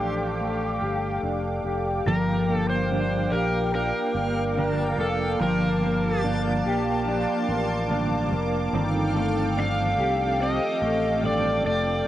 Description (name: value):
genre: dream pop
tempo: 72 BPM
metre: 4/4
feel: straight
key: G minor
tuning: A4 = 444 Hz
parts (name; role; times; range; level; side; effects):
- overdriven slide guitar; melody; 0.0-12.1 s; G4 to F5; -28 LUFS; equal; cassette tape, tape echo
- lush unison pad; sustained chords; 0.0-12.1 s; Bb3 to D6; -29 LUFS; right 1 dB; chorus, cassette tape
- mellow electric guitar; arpeggios; 0.0-12.1 s; Eb3 to G4; -27 LUFS; left 2 dB; analog chorus, cassette tape, tape echo
- fingered electric bass; bass; 0.0-12.0 s; F1 to C2; -30 LUFS; equal; none
- clean electric guitar; accompaniment; 2.1-12.1 s; G2 to A4; -31 LUFS; right 3 dB; tremolo, wide subtle chorus, cassette tape
- backwards swelling texture; texture; 3.3-12.1 s; F5 to C6; -39 LUFS; left 1 dB; built-in reverb, cassette tape, tape echo
room: moderate spring reverb, RT60 2.0 s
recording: home recording on cassette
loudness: -22 LUFS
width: side -13 dB against mid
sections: 0.0-2.1 A section; 2.1-12.1 B section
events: none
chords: 0.0 F69; 2.1 Gm7; 8.7 F13/G